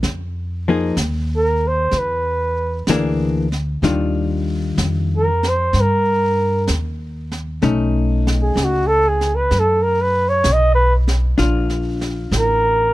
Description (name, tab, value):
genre	jazz ballad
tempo	64 BPM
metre	4/4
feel	swing 68% on 8ths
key	unclear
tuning	A4 = 440 Hz
part	upright bass	bass	0.0-12.9 s	A1 to G2	-20 LUFS	equal	none
part	jazz brush drum kit	drums	0.0-12.9 s	brushed snare drum, hi-hat, snare drum	-27 LUFS	right 2 dB	none
part	hollow-body jazz guitar	accompaniment	0.7-12.9 s	Eb3 to Ab4	-20 LUFS	left 4 dB	none
part	warm flugelhorn	melody	1.4-12.9 s	F#4 to D#5	-17 LUFS	right 1 dB	none
room	little or no reverb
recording	close, detailed microphones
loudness	-15 LUFS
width	side -17 dB against mid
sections	0.0-12.9 A section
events	flugelhorn solo 0.0-12.9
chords	0.0 Fm7; 1.9 E7#11; 3.8 Ebmaj9; 7.6 B9; 11.4 Bbmaj7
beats	| 0.03 0.97 1.92 2.87 | 3.83 4.77 5.72 6.67 | 7.61 8.56 9.50 10.44 | 11.38 12.31